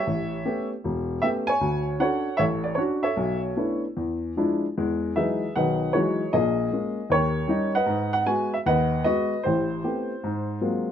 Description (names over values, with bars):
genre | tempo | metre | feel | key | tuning
solo jazz | 154 BPM | 4/4 | swing 66% on 8ths, rubato | A major, E major from 4.8 s | A4 = 441 Hz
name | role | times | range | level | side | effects
warm baby grand piano | solo | 0.0-10.9 s | E1 to G#5 | -22 LUFS | equal | none
room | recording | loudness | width
moderate large studio reverb, RT60 0.8 s | minimal, uncompressed stereo recording | -22 LUFS | side -9 dB against mid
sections
0.0-4.8 A section; 4.8-10.9 B section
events
none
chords
0.1 A9; 1.6 Dmaj7; 3.2 Bm11; 4.0 E7b9; 4.8 Emaj9; 6.3 A#7sus4; 7.1 D#7; 7.9 G#m7; 9.4 Am9; 10.2 G#13